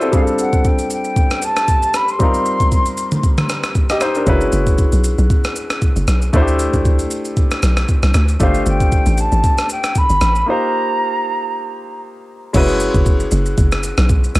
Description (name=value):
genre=amapiano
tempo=116 BPM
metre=4/4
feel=swing 55% on 16ths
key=unclear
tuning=A4 = 440 Hz
part: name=clear baby grand piano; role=accompaniment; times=0.0-14.4 s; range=G3 to E5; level=-20 LUFS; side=left 1 dB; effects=cassette tape
part: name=jungle sampler-style drum kit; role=drums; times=0.0-14.4 s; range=crash cymbal, kick drum, rim click, shaker, toms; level=-16 LUFS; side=equal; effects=overdrive, cassette tape
part: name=mellow concert flute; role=melody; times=0.1-3.6, 8.4-12.0 s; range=F5 to C6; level=-19 LUFS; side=equal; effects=cassette tape
part: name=hollow log drum bass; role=bass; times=4.3-14.4 s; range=F#1 to D2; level=-16 LUFS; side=equal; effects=none
room=little or no reverb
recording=home recording on cassette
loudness=-13 LUFS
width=side -19 dB against mid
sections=0.0-12.5 A section; 12.5-14.4 B section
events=break 10.5-12.5; drop 12.5-14.4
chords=0.1 G9sus4; 2.2 F9sus4; 4.3 F#9sus4; 6.3 D9sus4; 8.4 G9sus4; 10.5 F9sus4; 12.5 F#9sus4